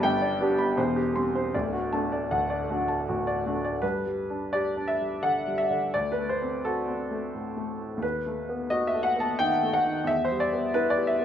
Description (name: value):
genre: classical, romantic character piece for solo piano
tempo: 77-90 BPM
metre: 3/4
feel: rubato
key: G major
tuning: A4 = 435 Hz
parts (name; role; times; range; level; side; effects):
- warm grand piano; solo; 0.0-11.2 s; D1 to C6; -24 LUFS; equal; none
room: moderate large studio reverb, RT60 0.9 s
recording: none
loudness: -25 LUFS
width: side -9 dB against mid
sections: 0.0-3.8 A section; 3.8-11.2 B section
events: none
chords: 0.0 G; 0.8 C/E; 1.5 D; 3.8 G; 5.9 D7; 8.0 B7/D#; 10.1 Em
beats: 0.04 0.77 | 1.53 2.30 3.07 | 3.82 4.53 5.23 | 5.94 6.64 7.33 | 8.03 8.71 9.39 | 10.07 10.74